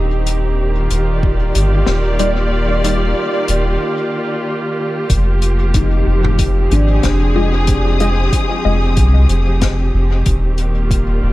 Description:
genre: ambient dub.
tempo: 93 BPM.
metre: 4/4.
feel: swing 55% on 16ths.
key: F dorian.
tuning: A4 = 440 Hz.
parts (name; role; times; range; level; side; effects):
muted studio string section; sustained chords; 0.0-11.3 s; Eb3 to Eb6; -19 LUFS; equal; none.
handpan; arpeggios; 0.0, 5.8-8.3 s; D4 to Eb4; -25 LUFS; left 3 dB; dub echo.
soft dub sub bass; bass; 0.0-11.3 s; Eb1 to C2; -15 LUFS; equal; none.
drifting glass-harmonics texture; texture; 0.0-3.8 s; Eb4; -31 LUFS; right 4 dB; chorus, built-in reverb.
warm soul drum kit; drums; 0.3-11.1 s; hi-hat, snare drum, toms; -24 LUFS; left 2 dB; dub echo.
electronic kick drum; drums; 1.2-11.1 s; none; -18 LUFS; equal; none.
filtered dub chord stab; stabs; 2.2-3.1, 7.4-8.8 s; G3 to Eb5; -23 LUFS; left 2 dB; phaser, dub echo.
room: studio ambience.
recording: none.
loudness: -13 LUFS.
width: side -17 dB against mid.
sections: 0.0-5.1 A section; 5.1-11.3 B section.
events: break 3.8-5.1.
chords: 0.0 Ebmaj7; 5.1 Fm7; 10.3 Ebmaj7.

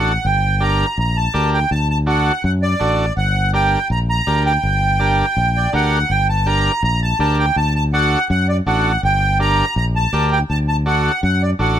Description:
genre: latin, cumbia.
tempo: 164 BPM.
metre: 4/4.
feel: straight.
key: G harmonic minor.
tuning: A4 = 443 Hz.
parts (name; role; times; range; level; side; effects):
accordion; melody; 0.0-11.8 s; D5 to Bb5; -18 LUFS; right 1 dB; light tremolo tuning.
combo organ; accompaniment; 0.0-11.8 s; D4 to Bb4; -22 LUFS; right 2 dB; none.
fingered electric bass; bass; 0.0-11.8 s; G1 to F#2; -18 LUFS; left 1 dB; none.
room: little or no reverb.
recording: close, detailed microphones.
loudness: -14 LUFS.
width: side -10 dB against mid.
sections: 0.0-6.1 A section; 6.1-11.8 A section.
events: none.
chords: 0.2 Gm; 1.7 D; 3.2 Gm; 7.6 D; 9.0 Gm; 10.5 D.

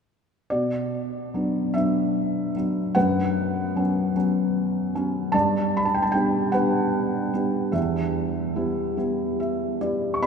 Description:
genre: classical, lyrical solo piano.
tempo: 50 BPM (dotted quarters).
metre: 6/8.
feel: rubato.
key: B minor.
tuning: A4 = 445 Hz.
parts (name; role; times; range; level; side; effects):
felt-muted upright piano; solo; 0.5-10.3 s; E2 to C#6; -22 LUFS; equal; none.
room: wet cathedral reverb, RT60 5.3 s.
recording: recorded in a church or concert hall.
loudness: -22 LUFS.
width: side -6 dB against mid.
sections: 0.5-10.3 A section.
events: felt piano fill 9.0-10.2.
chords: 0.5 Bm; 3.0 F#sus4; 5.3 G; 7.7 Em.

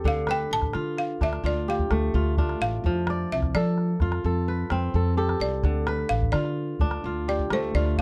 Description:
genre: west african traditional, West African string and xylophone music.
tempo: 86 BPM (dotted quarters).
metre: 12/8.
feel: straight.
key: unclear.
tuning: A4 = 441 Hz.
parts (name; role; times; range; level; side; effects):
kora; arpeggios; 0.0-8.0 s; D3 to D5; -30 LUFS; equal; none.
upright bass; bass; 0.0-8.0 s; A1 to F3; -29 LUFS; equal; none.
calabash; percussion; 0.0-8.0 s; none; -30 LUFS; equal; none.
balafon; melody; 0.1-8.0 s; C5 to A5; -32 LUFS; equal; none.
room: light reverb.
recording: dark, warm production.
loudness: -25 LUFS.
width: mono.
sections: 0.0-8.0 A section.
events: balafon solo 0.0-8.0.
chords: 0.0 Dm; 2.8 F; 5.6 Dm.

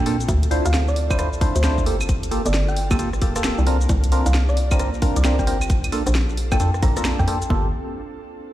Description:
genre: UK garage, two-step garage.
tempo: 133 BPM.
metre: 4/4.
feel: swing 63% on 16ths.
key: G dorian.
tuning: A4 = 441 Hz.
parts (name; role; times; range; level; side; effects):
thumb-piano-like synth pluck; melody; 0.0-7.4 s; C5 to Bb5; -29 LUFS; equal; chorus, ping-pong delay.
ethereal airy pad; sustained chords; 0.0-7.7 s; Bb3 to A4; -34 LUFS; equal; ensemble chorus, built-in reverb, sidechain pumping.
percussive organ stab; stabs; 0.0-7.7 s; Bb3 to C5; -26 LUFS; right 1 dB; chorus, phaser, ping-pong delay.
hollow knocking FM bass; bass; 0.0-7.7 s; D1 to Bb2; -20 LUFS; equal; none.
garage drum kit; drums; 0.1-7.5 s; claves, hi-hat, rim click, shaker, snare drum; -28 LUFS; equal; overdrive.
electronic kick drum; drums; 0.3-7.6 s; none; -21 LUFS; equal; overdrive.
room: digital ambience.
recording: played on a big sound system in a bare room, large studio reverb.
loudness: -18 LUFS.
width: side -14 dB against mid.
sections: 0.0-7.5 A section; 7.5-8.5 B section.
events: drop 0.0-7.5.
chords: 0.3 Dm9; 1.9 Gm9; 3.7 C9sus4; 5.7 Bbmaj7; 7.5 Gm9.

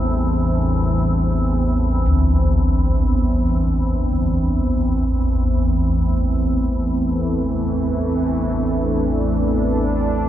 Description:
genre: dark ambient drone.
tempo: free time.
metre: none.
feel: none.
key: unclear.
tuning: A4 = 438 Hz.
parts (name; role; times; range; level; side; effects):
sweeping resonant pad; sustained chords; 0.0-10.3 s; E3 to D4; -23 LUFS; right 1 dB; chorus.
gamelan-type bossed gongs; arpeggios; 0.0-7.8 s; D2 to E3; -24 LUFS; left 1 dB; none.
organ-like drone; drone; 0.0-10.3 s; A1 to E2; -19 LUFS; equal; ensemble chorus, built-in reverb.
room: moderate huge ambient reverb, RT60 7.9 s.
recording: none.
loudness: -17 LUFS.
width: side -12 dB against mid.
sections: 0.0-10.3 A section.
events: fade-in on analog synth pad 0.0-10.3.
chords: 0.0 C; 4.6 Amadd11.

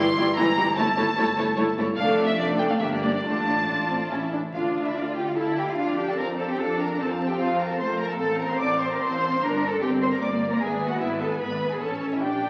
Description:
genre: quick classical-period movement for string orchestra.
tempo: 149 BPM.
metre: 3/4.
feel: rubato.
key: D minor.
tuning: A4 = 441 Hz.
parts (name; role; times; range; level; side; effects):
rich chamber violin section; melody; 0.0-12.5 s; Bb4 to C6; -32 LUFS; equal; none.
rich chamber violin section; second line; 0.0-12.5 s; E4 to D6; -32 LUFS; equal; none.
warm studio viola section; accompaniment; 0.0-12.5 s; E3 to F4; -29 LUFS; equal; none.
rich chamber cello section; bass; 0.0-12.5 s; F2 to D5; -32 LUFS; equal; none.
rich chamber double bass section; bass; 0.0-12.5 s; F1 to F2; -36 LUFS; equal; none.
room: wet recital hall reverb, RT60 1.7 s.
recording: very old 78 rpm record, vinyl crackle.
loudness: -25 LUFS.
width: mono.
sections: 0.0-4.5 A section; 4.5-12.5 B section.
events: none.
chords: 0.0 Em7b5/G; 0.8 A7/G; 2.0 Dm/F; 2.8 Gm; 3.2 Dm/A; 4.1 A; 4.5 Dm; 5.8 Dm/F; 7.0 F; 8.2 F/A; 9.4 Gm; 10.6 E7/G#; 11.8 A.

